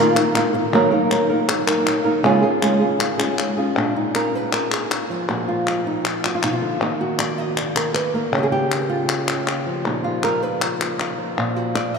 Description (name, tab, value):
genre	flamenco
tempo	158 BPM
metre	4/4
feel	straight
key	unclear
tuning	A4 = 440 Hz
part	flamenco guitar	melody	0.0-12.0 s	Bb2 to Eb5	-19 LUFS	right 1 dB	none
part	palmas hand claps	percussion	0.2-11.9 s	none	-24 LUFS	left 4 dB	none
room	wet cathedral reverb, RT60 6.3 s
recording	in a vast, echoing space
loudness	-18 LUFS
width	side -5 dB against mid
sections	0.0-3.8 A section; 3.8-12.0 B section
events	none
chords	0.0 Bbsus4; 0.7 Ebm; 2.2 Db; 3.8 Bbsus4; 6.8 Ebm; 8.3 Db; 9.8 Bbsus4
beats	0.35 | 0.73 1.11 1.49 1.87 | 2.25 2.63 3.01 3.38 | 3.77 4.14 4.53 4.91 | 5.29 5.67 6.05 6.43 | 6.81 7.19 7.57 7.95 | 8.33 8.71 9.09 9.47 | 9.85 10.23 10.61 10.99 | 11.37 11.75